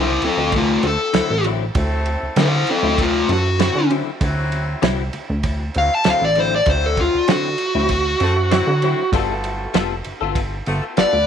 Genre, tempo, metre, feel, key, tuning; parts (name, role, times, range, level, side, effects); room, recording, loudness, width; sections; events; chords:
straight-eighth soul blues; 98 BPM; 4/4; straight; D mixolydian; A4 = 440 Hz
dark smooth lead guitar; melody; 0.0-11.3 s; A3 to A5; -18 LUFS; left 1 dB; overdrive
direct-recorded clean electric guitar; stabs; 0.0-11.2 s; D3 to A4; -26 LUFS; left 13 dB; ensemble chorus, tape echo
plucky analog bass; bass; 0.0-11.3 s; F1 to D3; -22 LUFS; equal
warm soul drum kit; drums; 0.2-11.1 s; kick drum, ride cymbal, snare drum; -24 LUFS; right 4 dB
warm horn section; sustained chords; 0.8-11.3 s; F#3 to E5; -29 LUFS; equal
light reverb, small room ambience; 1960s-style stereo; -16 LUFS; side -8 dB against mid
0.0-11.3 A section
lead electric guitar solo 0.0-11.3
0.0 D9; 9.1 G9